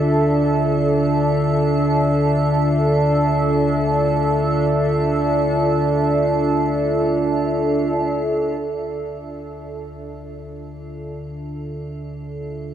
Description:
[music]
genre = dark ambient drone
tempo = free time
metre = none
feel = none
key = D minor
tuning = A4 = 436 Hz
[part]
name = sweeping resonant pad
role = sustained chords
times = 0.0-12.7 s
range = D4 to E5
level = -20 LUFS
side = right 2 dB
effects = chorus
[part]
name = deep rumbling drone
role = drone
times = 0.0-12.7 s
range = D2 to D3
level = -23 LUFS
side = left 2 dB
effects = built-in reverb
[part]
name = icy glass pad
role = texture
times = 0.0-12.7 s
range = F4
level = -28 LUFS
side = right 1 dB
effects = chorus, built-in reverb
[sound]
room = wet huge ambient reverb, RT60 8.0 s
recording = worn, warbling old tape, cassette tape, warbly pitch drift, studio reverb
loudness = -16 LUFS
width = side -10 dB against mid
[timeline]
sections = 0.0-8.6 A section; 8.6-12.7 B section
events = fade-in on analog synth pad 8.6-12.7; fade-in on ambient pad 8.6-12.7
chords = 0.0 Dmadd9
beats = free time

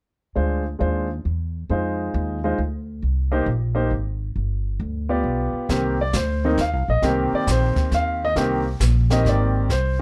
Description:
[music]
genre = jazz piano trio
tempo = 135 BPM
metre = 3/4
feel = swing 66% on 8ths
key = C minor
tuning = A4 = 440 Hz
[part]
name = clear baby grand piano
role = melody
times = 0.4-10.0 s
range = Eb3 to F5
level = -25 LUFS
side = equal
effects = none
[part]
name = upright bass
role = bass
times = 0.4-10.0 s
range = G1 to F2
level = -25 LUFS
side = equal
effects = none
[part]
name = jazz brush drum kit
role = drums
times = 5.7-10.0 s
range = brushed snare drum, hi-hat, kick drum, snare drum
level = -30 LUFS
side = equal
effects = none
[sound]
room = light reverb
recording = dark, warm production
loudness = -22 LUFS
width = mono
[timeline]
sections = 0.4-5.7 A section; 5.7-10.0 B section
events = none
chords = 0.4 Dm7b5; 1.7 Fm7; 3.0 Cm7; 4.4 G7; 5.7 Cm7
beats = | 0.37 0.81 1.25 | 1.70 2.14 2.58 | 3.03 3.47 3.92 | 4.36 4.81 5.25 | 5.70 6.14 6.58 | 7.03 7.47 7.92 | 8.36 8.80 9.25 | 9.69

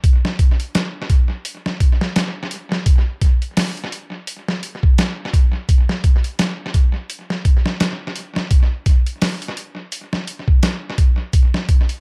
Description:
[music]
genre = trip hop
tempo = 85 BPM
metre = 4/4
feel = swing 58% on 16ths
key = none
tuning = none
[part]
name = boom bap sampler-style drum kit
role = drums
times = 0.0-12.0 s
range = hi-hat, kick drum, snare drum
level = -18 LUFS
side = equal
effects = tape echo
[sound]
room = little or no reverb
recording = echo-heavy mix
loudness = -18 LUFS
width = mono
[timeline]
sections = 0.0-12.0 A section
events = none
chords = none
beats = | 0.04 0.75 1.45 2.16 | 2.86 3.57 4.28 4.98 | 5.69 6.39 7.10 7.80 | 8.51 9.22 9.92 10.63 | 11.33

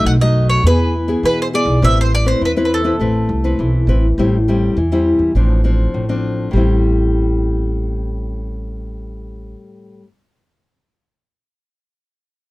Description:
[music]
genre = samba and choro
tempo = 102 BPM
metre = 4/4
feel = straight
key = A minor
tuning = A4 = 440 Hz
[part]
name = bowl-back mandolin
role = melody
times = 0.0-3.9 s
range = A4 to F#5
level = -19 LUFS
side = right 1 dB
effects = none
[part]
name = nylon-string guitar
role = accompaniment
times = 0.0-10.1 s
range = F#2 to B4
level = -18 LUFS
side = left 2 dB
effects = none
[part]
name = upright bass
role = bass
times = 0.0-9.5 s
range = A1 to E3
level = -16 LUFS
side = equal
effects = none
[sound]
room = little or no reverb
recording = dark, warm production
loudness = -13 LUFS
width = side -20 dB against mid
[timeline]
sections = 0.0-4.2 A section; 4.2-6.5 B section; 6.5-8.9 C section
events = none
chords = 0.0 B7; 0.7 E; 1.8 Amadd9; 4.2 Am7; 5.4 Dm7/A; 6.5 Am7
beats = 0.06 0.65 1.24 | 1.83 2.42 3.00 3.59 | 4.18 4.77 5.36 5.95 | 6.54 7.13 7.72 8.31

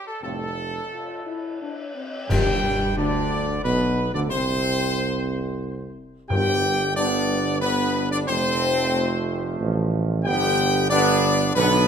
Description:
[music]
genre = classical, ceremonial fanfare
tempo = 90 BPM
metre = 3/4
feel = straight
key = G mixolydian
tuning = A4 = 440 Hz
[part]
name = bright trumpet section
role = melody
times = 0.0-11.9 s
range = A4 to G5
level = -25 LUFS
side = equal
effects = none
[part]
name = dark trombone section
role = sustained chords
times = 0.2-11.9 s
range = A2 to B3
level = -27 LUFS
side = right 3 dB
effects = none
[part]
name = mellow French horn section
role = sustained chords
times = 0.2-11.9 s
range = B3 to G4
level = -27 LUFS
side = left 6 dB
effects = none
[part]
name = warm tuba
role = bass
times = 0.2-11.9 s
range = F1 to G2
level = -26 LUFS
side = right 3 dB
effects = none
[part]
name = clash cymbals and concert bass drum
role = percussion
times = 2.3-3.6 s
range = none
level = -32 LUFS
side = left 1 dB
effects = none
[part]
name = timpani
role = percussion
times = 2.3-7.3 s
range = G2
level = -28 LUFS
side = left 1 dB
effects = none
[sound]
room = wet recital hall reverb, RT60 1.7 s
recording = none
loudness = -20 LUFS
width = side -7 dB against mid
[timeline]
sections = 0.0-2.3 A section; 2.3-11.9 B section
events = band accent 2.3-3.0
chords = 0.0 F; 2.3 G; 4.3 N.C.; 6.3 G; 8.3 F; 10.3 G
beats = | 0.23 0.92 1.60 | 2.30 2.97 3.64 | 4.30 4.97 5.64 | 6.30 6.97 7.63 | 8.29 8.94 9.60 | 10.25 10.90 11.55

